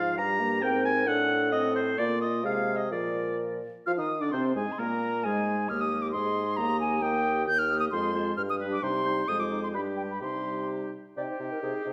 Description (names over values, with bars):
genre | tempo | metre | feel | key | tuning
quick classical-period movement for wind quintet | 132 BPM | 2/4 | rubato | Eb major, C minor from 7.5 s | A4 = 440 Hz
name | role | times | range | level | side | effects
silver concert flute | melody | 0.0-11.9 s | C5 to G6 | -33 LUFS | equal | none
clear oboe | second line | 0.0-11.9 s | G4 to Bb5 | -35 LUFS | equal | none
mellow clarinet | accompaniment | 0.0-11.9 s | Ab3 to D5 | -37 LUFS | equal | none
warm French horn | accompaniment | 0.0-11.9 s | F3 to F4 | -36 LUFS | equal | none
mellow bassoon | bass | 0.0-11.9 s | Eb2 to F3 | -36 LUFS | equal | none
room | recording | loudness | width
wet recital hall reverb, RT60 1.3 s | none | -28 LUFS | mono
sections
0.0-3.9 A section; 3.9-11.2 B section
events
none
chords
0.2 Gm; 0.6 Abmaj9; 1.1 Adim7; 2.0 Bb; 2.4 Ab/C; 2.9 Bb; 3.9 Ebsus2; 4.3 Ab/C; 4.8 Absus2; 5.7 Eb; 6.1 Ab; 6.6 Eb; 7.9 Fm; 8.4 G; 8.8 Cm; 9.3 Fm; 9.7 G; 10.2 Cm